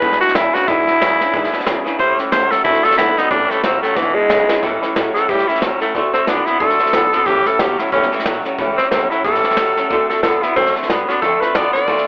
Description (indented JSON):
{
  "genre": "rockabilly",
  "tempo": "182 BPM",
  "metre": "4/4",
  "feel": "swing 58% on 8ths",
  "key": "A mixolydian",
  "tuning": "A4 = 440 Hz",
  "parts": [
    { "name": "growling tenor saxophone", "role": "melody", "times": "0.0-12.1 s", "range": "E3 to D5", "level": "-18 LUFS", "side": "equal", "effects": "none" },
    { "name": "picked steel-string acoustic guitar", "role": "accompaniment", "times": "0.0-12.1 s", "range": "A2 to B4", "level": "-27 LUFS", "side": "equal", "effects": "none" },
    { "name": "twangy electric guitar", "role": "riff", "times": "0.0-12.1 s", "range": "E2 to B3", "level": "-23 LUFS", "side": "equal", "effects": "harmonic tremolo" },
    { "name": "upright bass", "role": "bass", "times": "0.0-12.1 s", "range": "E1 to A2", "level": "-27 LUFS", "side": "equal", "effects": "none" },
    { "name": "jazz brush drum kit", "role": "drums", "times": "0.0-12.0 s", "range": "hi-hat, kick drum, snare drum", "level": "-26 LUFS", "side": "equal", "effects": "none" }
  ],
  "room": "moderate studio reverb, RT60 0.5 s",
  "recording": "telephone sound",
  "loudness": "-16 LUFS",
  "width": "mono",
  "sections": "0.0-4.6 A section; 4.6-12.1 B section",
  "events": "tenor saxophone solo 0.0-4.6; drum fill 4.0-4.6",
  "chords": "0.0 E7; 2.0 A7; 2.7 D7; 3.3 A7; 4.0 E7; 4.6 A7; 5.9 D7; 7.3 A7; 9.9 D7; 11.2 Dm7"
}